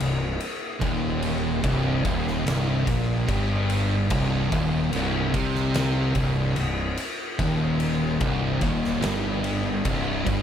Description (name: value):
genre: stoner and doom metal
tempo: 73 BPM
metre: 4/4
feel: straight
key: C minor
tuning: A4 = 441 Hz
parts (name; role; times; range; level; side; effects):
- distorted electric guitar; riff; 0.0-10.4 s; C2 to C3; -30 LUFS; left 1 dB; distortion
- thick fuzz guitar; riff; 0.0-10.4 s; C2 to C3; -28 LUFS; left 6 dB; distortion
- thick fuzz guitar; riff; 0.0-10.4 s; C2 to C3; -28 LUFS; right 6 dB; distortion
- fuzz fingered electric bass; bass; 0.0-10.4 s; C1 to C2; -29 LUFS; equal; overdrive
- oversized low-tuned drum kit; drums; 0.0-10.4 s; kick drum, ride cymbal, snare drum; -29 LUFS; equal; none
room: small room ambience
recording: none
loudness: -22 LUFS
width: side -9 dB against mid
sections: 0.0-10.4 A section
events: none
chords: 0.0 Cm